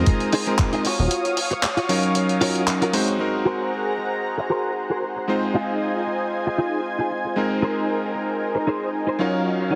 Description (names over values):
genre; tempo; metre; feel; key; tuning
nu-disco, nu disco; 115 BPM; 4/4; swing 54% on 16ths; Eb dorian; A4 = 440 Hz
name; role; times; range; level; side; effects
bright electric grand piano; accompaniment; 0.0-9.8 s; Gb3 to F5; -27 LUFS; equal; digital delay
lush unison pad; sustained chords; 0.0-9.8 s; Gb3 to Eb6; -29 LUFS; equal; chorus, sidechain pumping
chorused synth bass; bass; 0.0-1.1 s; Eb1; -23 LUFS; equal; none
direct-recorded clean electric guitar; riff; 0.1-9.8 s; Eb4 to Eb5; -27 LUFS; equal; ensemble chorus, low-pass filter, digital delay
dusty soul sampler-style drum kit; drums; 0.1-3.2 s; handclaps, hi-hat; -28 LUFS; equal; low-pass filter on hats, studio ambience, low-pass filter on snare
electronic kick drum; drums; 0.1-0.7 s; none; -22 LUFS; equal; studio ambience
room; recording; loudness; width
moderate plate reverb, RT60 2.0 s, digital ambience; heavily compressed radio sound; -23 LUFS; mono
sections
0.0-3.2 A section; 3.2-9.8 B section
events
filter sweep on clean electric guitar 3.2-9.8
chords
0.0 Bb9sus4; 0.9 Ebm9; 3.2 Ab9; 5.3 Fm7; 7.4 Bb9sus4; 9.2 Ebm9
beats
0.07 0.59 | 1.11 1.63 2.16 2.68 | 3.20 3.72 4.24 4.76 | 5.29 5.81 6.33 6.85 | 7.37 7.89 8.42 8.94 | 9.46